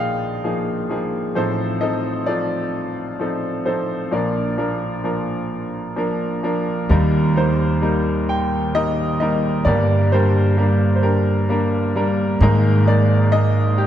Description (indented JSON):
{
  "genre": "acoustic folk-pop ballad",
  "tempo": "44 BPM (dotted quarters)",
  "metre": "6/8",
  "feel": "straight",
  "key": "Eb major",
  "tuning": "A4 = 440 Hz",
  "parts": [
    { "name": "bright grand piano", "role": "melody", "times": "0.0-13.9 s", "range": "G1 to G5", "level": "-19 LUFS", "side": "equal", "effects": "none" },
    { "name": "upright bass", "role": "bass", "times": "6.9-13.9 s", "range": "Eb2 to Ab2", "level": "-18 LUFS", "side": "right 1 dB", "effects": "none" }
  ],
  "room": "moderate concert hall reverb, RT60 2.0 s",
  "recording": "dark, warm production",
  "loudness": "-17 LUFS",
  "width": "side -10 dB against mid",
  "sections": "0.0-6.9 A section; 6.9-13.9 B section",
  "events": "none",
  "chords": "0.0 Bb7sus4; 1.3 F7/A; 4.1 Bb; 6.9 Eb; 9.7 Gm; 12.4 Absus2",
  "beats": "| 1.35 2.73 | 4.11 5.50 | 6.90 8.28 | 9.66 11.03 | 12.41 13.79"
}